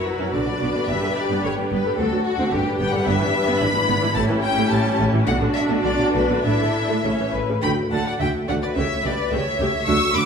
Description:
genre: quick classical-period movement for string orchestra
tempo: 108 BPM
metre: 2/4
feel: rubato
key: unclear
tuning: A4 = 440 Hz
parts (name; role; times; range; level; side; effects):
- rich studio violin section; melody; 0.0-10.3 s; F#4 to E6; -24 LUFS; left 3 dB; none
- warm studio violin section; second line; 0.0-10.3 s; D4 to C#6; -25 LUFS; left 2 dB; none
- rich studio viola section; accompaniment; 0.0-10.2 s; C#3 to G4; -25 LUFS; right 1 dB; none
- warm studio cello section; bass; 0.2-10.2 s; D2 to D3; -26 LUFS; right 1 dB; none
- rich studio double bass section; bass; 0.3-10.2 s; G1 to D2; -27 LUFS; right 2 dB; none
room: wet recital hall reverb, RT60 1.8 s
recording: recorded in a church or concert hall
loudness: -18 LUFS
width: side -6 dB against mid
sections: 0.0-7.6 A section; 7.6-10.3 B section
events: none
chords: 0.3 Bm; 0.9 G; 2.0 D; 2.5 G; 3.1 Em7/G; 3.6 E7/G#; 4.2 A7; 5.3 Bm; 6.5 Asus4; 7.0 A; 7.6 D; 8.8 A7/C#

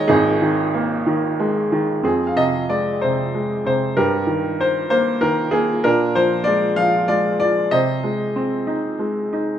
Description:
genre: classical, lyrical solo piano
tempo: 63 BPM (dotted quarters)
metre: 6/8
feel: rubato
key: F dorian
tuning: A4 = 442 Hz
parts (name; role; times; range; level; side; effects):
- bright baby grand piano; solo; 0.0-9.6 s; Ab1 to F5; -17 LUFS; equal; none
room: moderate recital hall reverb, RT60 1.5 s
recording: none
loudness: -17 LUFS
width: side -10 dB against mid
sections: 0.0-2.0 A section; 2.0-9.6 B section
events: none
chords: 0.0 Ebsus4; 2.0 Fm; 4.0 Eb/G; 5.8 Bb7; 7.7 Ab/C

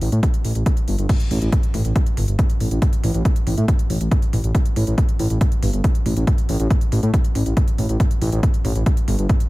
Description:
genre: driving peak-time techno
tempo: 139 BPM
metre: 4/4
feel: straight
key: unclear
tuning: A4 = 440 Hz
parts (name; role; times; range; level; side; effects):
- dark detuned saw bass; bass; 0.0-9.3 s; G1 to A2; -19 LUFS; equal; sidechain pumping
- techno drum kit; drums; 0.0-9.5 s; crash cymbal, hi-hat, toms; -27 LUFS; right 1 dB; overdrive, sidechain pumping on hats, sidechain pumping on toms, sidechain pumping on cymbals
- electronic kick drum; drums; 0.2-9.4 s; none; -19 LUFS; equal; none
room: little or no reverb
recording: none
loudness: -17 LUFS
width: side -19 dB against mid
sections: 0.0-9.5 A section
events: none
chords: none

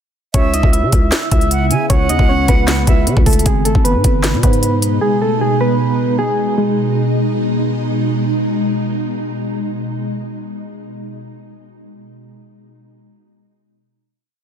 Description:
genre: hip hop, trap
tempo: 154 BPM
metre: 4/4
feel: half-time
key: G# phrygian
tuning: A4 = 438 Hz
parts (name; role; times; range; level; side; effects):
- soft electric-piano-like synth keys; melody; 0.3-7.7 s; G#3 to E5; -18 LUFS; right 1 dB; chorus, tremolo, tape echo
- silver concert flute; second line; 0.3-3.1 s; E5 to G#5; -23 LUFS; right 4 dB; tape echo
- ethereal airy pad; sustained chords; 1.2-10.5 s; B2 to E4; -20 LUFS; equal; ensemble chorus, built-in reverb
- growling 808-style bass; bass; 0.3-5.0 s; G#1 to C#3; -18 LUFS; equal; none
- trap drum kit; drums; 0.3-4.9 s; hi-hat, kick drum, snare drum; -14 LUFS; equal; none
room: light reverb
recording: dense, heavily limited modern master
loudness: -13 LUFS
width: side -8 dB against mid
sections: 0.3-6.6 hook; 6.6-9.7 final chord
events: none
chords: 0.3 C#m7; 3.5 G#m

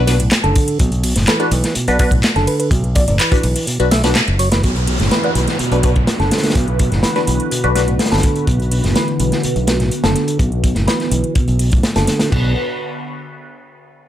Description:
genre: breakbeat, breaks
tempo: 125 BPM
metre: 4/4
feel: straight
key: B minor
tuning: A4 = 439 Hz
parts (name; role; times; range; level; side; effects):
- percussive tonewheel organ; riff; 0.0-12.5 s; A2 to A3; -20 LUFS; right 1 dB; overdrive, stopped rotary speaker, low-pass filter, digital delay
- filtered dub chord stab; stabs; 0.0-7.8 s; D4 to B4; -20 LUFS; left 2 dB; phaser, cassette tape, digital delay
- modern bright fingered electric bass; bass; 0.0-12.5 s; F#1 to B1; -18 LUFS; equal; none
- crunchy breakbeat drum kit; drums; 0.1-12.4 s; crash cymbal, hi-hat, kick drum, snare drum; -18 LUFS; equal; none
- house drum kit; drums; 0.1-12.3 s; handclaps, hi-hat, ride cymbal; -23 LUFS; equal; overdrive
- bell-like FM electric piano; melody; 1.3-3.2 s; A4 to D5; -23 LUFS; equal; chorus, old record sound, cassette tape, digital delay
- phased analog pad; sustained chords; 4.6-12.5 s; D3 to B4; -24 LUFS; equal; phaser, chorus, sidechain pumping
- downlifter; sound effects; 4.6-8.5 s; none; -26 LUFS; equal; none
room: light reverb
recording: none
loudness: -13 LUFS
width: side -12 dB against mid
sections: 0.0-4.6 A section; 4.6-12.3 B section; 12.3-14.1 C section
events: drop 0.0-4.6; band accent 4.2; filter sweep on tonewheel organ 4.6-12.3; filter sweep on analog synth pad 4.6-12.3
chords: 0.0 Bm

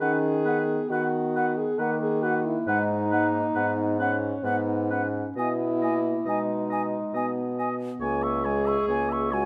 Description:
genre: classical, slow romantic movement for wind quintet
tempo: 68 BPM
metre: 3/4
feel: rubato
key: unclear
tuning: A4 = 442 Hz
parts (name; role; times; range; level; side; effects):
- hollow concert flute; melody; 0.0-9.5 s; F#5 to C#6; -35 LUFS; equal; none
- warm oboe; second line; 0.0-9.5 s; B4 to E5; -35 LUFS; equal; none
- dark clarinet; accompaniment; 0.0-9.5 s; G#3 to D#4; -35 LUFS; equal; none
- warm French horn; accompaniment; 0.0-9.5 s; B3 to A#4; -30 LUFS; equal; none
- mellow bassoon; bass; 0.0-9.5 s; C#2 to D#3; -32 LUFS; equal; none
room: light reverb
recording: close, detailed microphones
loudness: -26 LUFS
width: mono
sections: 0.0-9.5 A section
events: none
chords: 0.0 B/D#; 2.7 G#m7; 5.4 G#m/B; 8.0 C#m

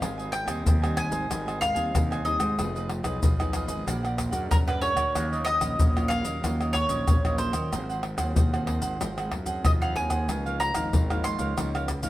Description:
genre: samba and choro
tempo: 93 BPM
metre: 4/4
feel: straight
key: unclear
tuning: A4 = 443 Hz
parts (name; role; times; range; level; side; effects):
- bowl-back mandolin; melody; 0.0-11.9 s; Bb4 to C6; -29 LUFS; equal; none
- cavaquinho; accompaniment; 0.0-12.1 s; Eb4 to Ab5; -35 LUFS; right 3 dB; none
- nylon-string guitar; accompaniment; 0.0-12.1 s; Ab2 to Ab4; -35 LUFS; left 2 dB; none
- fuzz fingered electric bass; bass; 0.0-12.1 s; F1 to Eb3; -30 LUFS; equal; overdrive
- maracas, surdo, pandeiro and tamborim; percussion; 0.0-12.1 s; none; -26 LUFS; left 1 dB; none
room: moderate studio reverb, RT60 0.8 s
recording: band playing live in one room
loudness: -24 LUFS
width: side -15 dB against mid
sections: 0.0-12.1 A section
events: none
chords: 0.0 Abmaj7; 2.6 Fm7b5; 3.9 Bbaug7; 5.2 Ebm9; 7.7 Ab6; 10.3 Db69

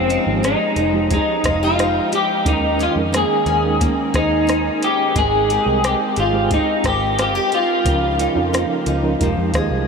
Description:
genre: indie pop, bedroom pop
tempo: 89 BPM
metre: 4/4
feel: straight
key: F minor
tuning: A4 = 440 Hz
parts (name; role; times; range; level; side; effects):
- electric guitar through a small old amp; melody; 0.0-9.9 s; C4 to Ab4; -18 LUFS; left 1 dB; analog chorus, ping-pong delay
- picked steel-string acoustic guitar; accompaniment; 0.0-9.9 s; Db3 to Bb4; -25 LUFS; left 2 dB; lush chorus, vibrato effect
- reed electric piano; accompaniment; 0.0-9.9 s; F3 to G5; -25 LUFS; right 5 dB; fast tremolo, cassette tape
- vintage muted picked electric bass; bass; 0.0-9.8 s; F1 to F2; -24 LUFS; equal; none
- soft vintage rhythm box; drums; 0.1-9.7 s; hi-hat, kick drum, rim click; -25 LUFS; equal; none
room: wet huge ambient reverb, RT60 8.4 s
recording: dreamy mix soaked in reverb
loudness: -15 LUFS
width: side -5 dB against mid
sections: 0.0-9.9 A section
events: reed electric piano fill 9.2-9.9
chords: 0.0 Fm9; 2.5 Eb7sus4; 5.2 Abmaj9; 7.9 Db69; 9.2 Fm11

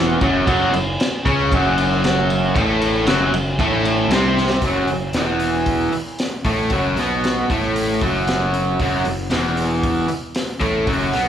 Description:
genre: garage rock duo or trio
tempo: 115 BPM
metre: 4/4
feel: straight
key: unclear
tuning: A4 = 439 Hz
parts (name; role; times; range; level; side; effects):
- raw garage guitar; riff; 0.0-11.3 s; E2 to C#4; -18 LUFS; equal; overdrive
- fuzz picked electric bass; bass; 0.0-11.3 s; E1 to C#2; -25 LUFS; equal; overdrive
- crunchy breakbeat drum kit; drums; 0.2-11.3 s; hi-hat, kick drum, ride cymbal, snare drum; -22 LUFS; equal; none
room: moderate large studio reverb, RT60 1.3 s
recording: band playing live in one room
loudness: -16 LUFS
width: side -9 dB against mid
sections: 0.0-4.6 A section; 4.6-11.3 B section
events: drum fill 4.4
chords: 0.0 F#5; 4.6 Esus24

